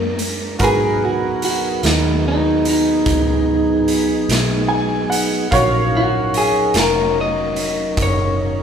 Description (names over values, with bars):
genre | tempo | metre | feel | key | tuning
slow blues | 49 BPM (dotted quarters) | 12/8 | straight | unclear | A4 = 440 Hz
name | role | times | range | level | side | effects
electric guitar through a small old amp | melody | 0.0-8.6 s | Bb3 to Eb5 | -19 LUFS | left 1 dB | none
bright upright piano | accompaniment | 0.0-8.6 s | D4 to Ab5 | -22 LUFS | right 2 dB | none
mellow tonewheel organ | sustained chords | 0.0-8.6 s | Gb3 to Bb4 | -22 LUFS | right 1 dB | slow rotary speaker
vintage muted fingered electric bass | bass | 0.0-8.6 s | F1 to Ab2 | -23 LUFS | equal | none
raw garage drum kit | drums | 0.2-8.2 s | hi-hat, kick drum, snare drum | -22 LUFS | right 1 dB | none
room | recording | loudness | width
moderate large studio reverb, RT60 1.2 s | band playing live in one room | -15 LUFS | side -7 dB against mid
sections
0.0-8.6 A section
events
clean electric guitar solo 0.0-8.6; upright piano fill 4.3-5.5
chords
0.0 Bb7#9; 0.6 Abm7; 5.5 Ebm7